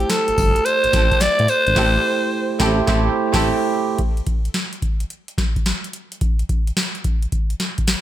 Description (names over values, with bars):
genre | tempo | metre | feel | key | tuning
R&B, new jack swing | 108 BPM | 4/4 | swing 66% on 16ths | A minor | A4 = 440 Hz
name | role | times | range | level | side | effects
raspy alto saxophone | melody | 0.0-2.6 s | G4 to D5 | -17 LUFS | equal | none
bell-like tine electric piano | accompaniment | 0.0-4.0 s | A3 to C5 | -22 LUFS | right 5 dB | wide subtle chorus
booming analog drum machine | drums | 0.0-8.0 s | crash cymbal, hi-hat, kick drum, snare drum, tambourine | -20 LUFS | equal | none
group handclap | percussion | 0.1-1.4 s | none | -35 LUFS | left 6 dB | none
smooth synth bass | bass | 0.3-3.5 s | G1 to A2 | -21 LUFS | equal | none
rich symphonic string section | stabs | 0.9-3.5 s | C4 to A4 | -27 LUFS | left 2 dB | ping-pong delay
room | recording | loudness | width
light reverb, digital ambience | none | -17 LUFS | side -12 dB against mid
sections
0.0-4.0 A section; 4.0-8.0 B section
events
band accent 1.8-4.0; kick muted 2.9-4.0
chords
0.0 Am7; 4.0 N.C.